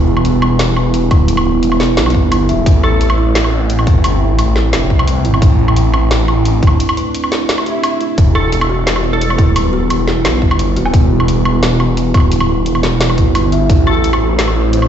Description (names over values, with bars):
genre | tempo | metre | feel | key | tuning
half-time drum and bass | 174 BPM | 4/4 | half-time | E minor | A4 = 442 Hz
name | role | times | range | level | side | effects
dark analog pad | sustained chords | 0.0-14.9 s | G3 to C5 | -20 LUFS | equal | chorus, phaser, sidechain pumping
kalimba | arpeggios | 0.0-14.9 s | E4 to E5 | -19 LUFS | right 4 dB | ping-pong delay
phased detuned saw bass | bass | 0.0-14.9 s | D1 to C2 | -14 LUFS | equal | phaser
drum and bass drum kit | drums | 0.2-14.9 s | hi-hat, snare drum, woodblock | -18 LUFS | equal | none
electronic kick drum | drums | 1.1-13.8 s | none | -10 LUFS | equal | none
glassy wavetable pluck | melody | 2.8-3.0, 8.4-9.3, 13.9-14.1 s | A4 | -23 LUFS | left 2 dB | chorus, dub echo
swell | sound effects | 7.6-8.2 s | none | -24 LUFS | right 1 dB | none
room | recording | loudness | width
light reverb | played on a big sound system in a bare room, large studio reverb, nothing above 8.0 kHz | -10 LUFS | side -9 dB against mid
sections
0.0-14.9 A section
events
break 6.8-8.2; swell 7.6-8.2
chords
0.0 Em; 2.7 Am; 8.2 Em; 13.7 Am